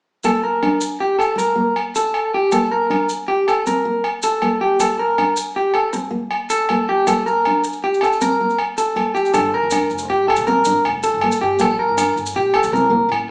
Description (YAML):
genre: highlife guitar band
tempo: 106 BPM (dotted quarters)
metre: 12/8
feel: straight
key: G minor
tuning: A4 = 440 Hz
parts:
  - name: nylon-string guitar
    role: accompaniment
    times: 0.2-13.2 s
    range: A3 to D4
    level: -26 LUFS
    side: equal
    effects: none
  - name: electric guitar at the edge of break-up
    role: arpeggios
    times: 0.2-13.1 s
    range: G4 to Bb4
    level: -20 LUFS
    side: equal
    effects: none
  - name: maracas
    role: percussion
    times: 0.2-12.8 s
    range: none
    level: -33 LUFS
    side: equal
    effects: none
  - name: agogo bells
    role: percussion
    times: 0.3-13.3 s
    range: none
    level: -26 LUFS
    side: equal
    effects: none
  - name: upright bass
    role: bass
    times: 9.4-13.3 s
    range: F1 to Bb2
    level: -35 LUFS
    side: equal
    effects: none
room: wet large studio reverb, RT60 0.9 s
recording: band playing live in one room, small speaker sound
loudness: -18 LUFS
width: mono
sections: 0.3-9.3 A section; 9.3-13.3 B section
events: none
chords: 0.3 Gmadd9; 2.5 Bb6; 3.7 C5; 4.8 Gmadd9; 7.1 Bb6; 8.2 C5; 9.3 Gmadd9; 11.6 Bb6; 12.7 C5